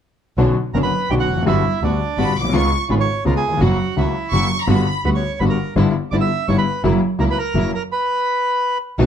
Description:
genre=tango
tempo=167 BPM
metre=3/4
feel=rubato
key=B harmonic minor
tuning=A4 = 440 Hz
part: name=bright concert grand piano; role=accompaniment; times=0.4-9.1 s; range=F#1 to F#4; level=-19 LUFS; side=left 4 dB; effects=none
part: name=clear studio string section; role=stabs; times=0.4-9.1 s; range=F#3 to F#4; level=-27 LUFS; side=right 5 dB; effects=none
part: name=clear double bass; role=bass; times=0.4-9.1 s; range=E#1 to D2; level=-21 LUFS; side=right 2 dB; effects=none
part: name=bandoneon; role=melody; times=0.7-8.8 s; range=D4 to E6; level=-21 LUFS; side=right 3 dB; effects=none
part: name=clear studio violin section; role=second line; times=2.2-5.0 s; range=A#5 to D6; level=-23 LUFS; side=equal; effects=none
room=light reverb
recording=dark, warm production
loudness=-16 LUFS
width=side -8 dB against mid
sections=0.4-9.0 A section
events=none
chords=0.4 Bmadd9; 1.5 Gmaj7; 2.5 C#7; 3.6 F#; 4.7 Gmaj7; 5.8 Em7/G; 6.8 F#7; 7.9 N.C.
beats=| 0.38 0.74 1.10 | 1.46 1.82 2.18 | 2.53 2.89 3.25 | 3.61 3.97 4.33 | 4.69 5.05 5.41 | 5.76 6.12 6.48 | 6.84 7.20 7.55 | 7.91 8.27 8.63 | 8.99

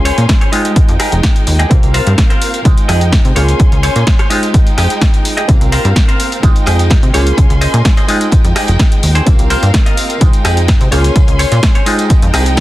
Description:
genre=filtered disco house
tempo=127 BPM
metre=4/4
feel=straight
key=F minor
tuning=A4 = 440 Hz
part: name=auto-wah clav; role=accompaniment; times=0.0-12.6 s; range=Ab3 to C6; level=-20 LUFS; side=equal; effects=overdrive, phaser, vintage 12-bit sampler grit, sidechain pumping, low-pass filter
part: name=clear studio string section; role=sustained chords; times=0.0-12.6 s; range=Ab3 to C6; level=-21 LUFS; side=left 1 dB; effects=sidechain pumping, low-pass filter
part: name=plucky analog bass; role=bass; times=0.0-12.6 s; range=F1 to C3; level=-13 LUFS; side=equal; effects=sidechain pumping, low-pass filter
part: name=semi-hollow electric guitar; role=riff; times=0.1-12.6 s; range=F4 to Eb5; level=-19 LUFS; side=equal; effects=sidechain pumping, low-pass filter
part: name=punchy analog drum machine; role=drums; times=0.1-12.6 s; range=hi-hat, rim click, snare drum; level=-19 LUFS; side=equal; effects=sidechain pumping on hats
part: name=tambourine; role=percussion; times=0.1-12.6 s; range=none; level=-29 LUFS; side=right 1 dB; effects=sidechain pumping on perc, low-pass filter on perc
part: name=electronic kick drum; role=drums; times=0.3-12.6 s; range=none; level=-10 LUFS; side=equal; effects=none
room=digital ambience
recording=dense, heavily limited modern master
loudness=-8 LUFS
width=side -16 dB against mid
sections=0.0-12.6 A section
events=none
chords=0.0 Bbm9/Db; 0.5 Fm9; 1.7 C7sus4; 2.7 Fm9/C; 3.4 Bbm9/Db; 4.3 Fm9; 5.5 C7sus4; 6.4 Fm9/C; 7.1 Bbm9/Db; 8.1 Fm9; 9.3 C7sus4; 10.2 Fm9/C; 10.9 Bbm9/Db; 11.9 Fm9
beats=0.29 0.76 1.24 | 1.71 2.18 2.65 3.12 | 3.60 4.07 4.54 5.01 | 5.49 5.96 6.43 6.91 | 7.38 7.85 8.32 8.79 | 9.27 9.74 10.21 10.68 | 11.16 11.63 12.10 12.57

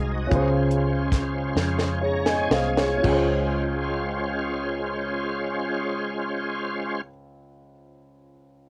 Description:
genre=slow gospel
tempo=36-54 BPM (dotted quarters)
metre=6/8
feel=straight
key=Db major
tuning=A4 = 440 Hz
part: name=dark upright piano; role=accompaniment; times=0.0-8.7 s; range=Db2 to Ab5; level=-28 LUFS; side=equal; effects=cassette tape
part: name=bright tonewheel organ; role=sustained chords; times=0.0-7.0 s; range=Ab3 to Bb5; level=-31 LUFS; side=equal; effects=slow rotary speaker, overdrive, chorus vibrato, cassette tape
part: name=vintage muted fingered electric bass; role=bass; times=0.0-7.0 s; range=C2 to F2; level=-31 LUFS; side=equal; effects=none
part: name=tight funk drum kit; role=drums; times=0.3-3.3 s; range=crash cymbal, hi-hat, kick drum, snare drum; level=-28 LUFS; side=equal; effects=cassette tape
room=moderate booth ambience, RT60 0.2 s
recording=home recording on cassette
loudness=-25 LUFS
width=mono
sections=0.0-3.0 A section; 3.0-8.7 B section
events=slowing down 0.0-3.0; drum fill 1.6-3.0; tonewheel organ fill 1.6-3.0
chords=0.3 Dbmaj7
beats=| 0.31 1.55 | 3.04 4.70 | 6.36 8.02

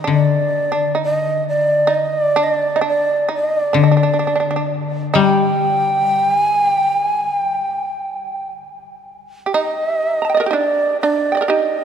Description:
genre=japanese traditional, Japanese chamber music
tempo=59-66 BPM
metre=4/4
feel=rubato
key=unclear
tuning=A4 = 440 Hz
part: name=shamisen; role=second line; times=0.0-11.8 s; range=D4 to Bb5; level=-21 LUFS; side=right 4 dB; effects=none
part: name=koto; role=accompaniment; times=0.0-8.0 s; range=D3 to G3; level=-19 LUFS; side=left 6 dB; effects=none
part: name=mellow shakuhachi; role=melody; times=0.1-11.8 s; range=D5 to G5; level=-17 LUFS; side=right 1 dB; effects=none
room=wet cathedral reverb, RT60 5.9 s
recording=none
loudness=-15 LUFS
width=side -8 dB against mid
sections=0.0-9.5 A section; 9.5-11.8 B section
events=none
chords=none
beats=0.07 0.99 | 1.91 2.83 3.76 4.69 | 5.62 6.56 7.52 8.53 | 9.53 10.52 11.47

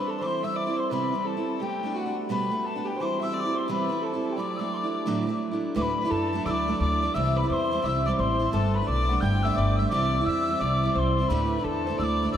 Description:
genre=celtic folk, Celtic hornpipe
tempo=173 BPM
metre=4/4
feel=swing 63% on 8ths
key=D mixolydian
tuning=A4 = 440 Hz
part: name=mellow hollow wooden whistle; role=melody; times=0.0-12.4 s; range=F#5 to G6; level=-29 LUFS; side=left 2 dB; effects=none
part: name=Celtic harp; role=second line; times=0.0-12.4 s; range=F#4 to G5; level=-34 LUFS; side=right 1 dB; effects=none
part: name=clear fiddle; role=second line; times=0.0-12.4 s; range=F#4 to G5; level=-35 LUFS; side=left 3 dB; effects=none
part: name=picked steel-string acoustic guitar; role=accompaniment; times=0.0-12.4 s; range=D2 to E4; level=-28 LUFS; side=right 3 dB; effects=none
part: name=upright bass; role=bass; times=5.8-12.4 s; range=G1 to F#2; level=-27 LUFS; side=left 1 dB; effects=none
room=wet cathedral reverb, RT60 5.7 s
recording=in a vast, echoing space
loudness=-24 LUFS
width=side -9 dB against mid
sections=0.0-5.8 A section; 5.8-12.4 B section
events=none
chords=0.2 C; 1.6 Gadd9; 3.0 C; 4.4 Dadd9; 7.1 C; 8.5 Gadd9; 9.9 C; 11.3 Dsus2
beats=| 0.21 0.56 0.90 1.25 | 1.60 1.95 2.29 2.64 | 2.99 3.33 3.68 4.03 | 4.38 4.72 5.07 5.42 | 5.76 6.11 6.46 6.80 | 7.15 7.49 7.84 8.19 | 8.53 8.88 9.22 9.57 | 9.92 10.26 10.61 10.95 | 11.30 11.65 11.99 12.34

